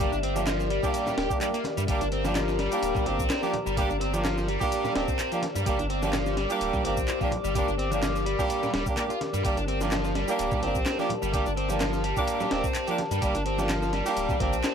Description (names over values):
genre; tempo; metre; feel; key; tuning
breakbeat, breaks; 127 BPM; 4/4; swing 54% on 16ths; G dorian; A4 = 438 Hz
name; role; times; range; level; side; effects
warbly tape-like pad; sustained chords; 0.0-14.7 s; G4 to D6; -33 LUFS; left 3 dB; chorus, built-in reverb, vintage 12-bit sampler grit, sidechain pumping
overdriven electric guitar; riff; 0.0-14.7 s; F3 to G4; -30 LUFS; left 1 dB; digital delay
clear horn section; stabs; 0.0-14.6 s; Bb3 to G4; -30 LUFS; right 4 dB; digital delay
saturated sub bass; bass; 0.0-14.6 s; D1 to G2; -31 LUFS; equal; none
breakbeat sampler-style drum kit; drums; 0.0-14.7 s; hi-hat, kick drum, snare drum; -31 LUFS; equal; none
electronic shaker and handclaps; drums; 0.0-14.7 s; none; -37 LUFS; left 1 dB; none
bongos and congas; percussion; 0.1-14.7 s; none; -40 LUFS; right 4 dB; none
room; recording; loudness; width
light reverb; none; -24 LUFS; side -7 dB against mid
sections
0.0-14.7 A section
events
none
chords
0.0 Gm